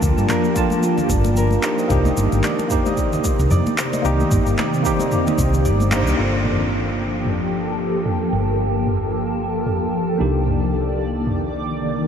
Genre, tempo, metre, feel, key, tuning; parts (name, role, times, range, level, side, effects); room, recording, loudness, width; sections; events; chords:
sunset chillout; 112 BPM; 4/4; swing 57% on 16ths; G minor; A4 = 442 Hz
tine electric piano; accompaniment; 0.0-12.1 s; Bb3 to A5; -24 LUFS; right 1 dB; medium stereo tremolo, auto-pan, diffuse ambient delay
shimmering ambient pad; sustained chords; 0.0-12.1 s; C3 to D5; -23 LUFS; left 1 dB; chorus, built-in reverb, phaser
concert harp; arpeggios; 0.0-8.1 s; F4 to Eb5; -26 LUFS; right 2 dB; diffuse ambient delay
hollow-body short-scale fingered electric bass; bass; 0.0-12.1 s; G1 to G2; -21 LUFS; equal
deep house drum kit; drums; 0.0-12.1 s; cabasa, crash cymbal, handclaps, toms; -26 LUFS; equal; low-pass filter on snare, low-pass filter on perc, low-pass filter on toms, low-pass filter on cymbals
electronic kick drum; drums; 0.0-5.5 s; -23 LUFS; equal
congas; percussion; 0.3-6.0 s; -30 LUFS; left 4 dB
moderate huge ambient reverb, RT60 9.1 s; dreamy mix soaked in reverb, lossy compression artefacts; -17 LUFS; side -8 dB against mid
0.0-6.2 A section; 6.2-12.1 B section
band accent 5.9
0.0 Gm9; 1.6 Cm9; 6.2 Gm9; 10.2 Cm9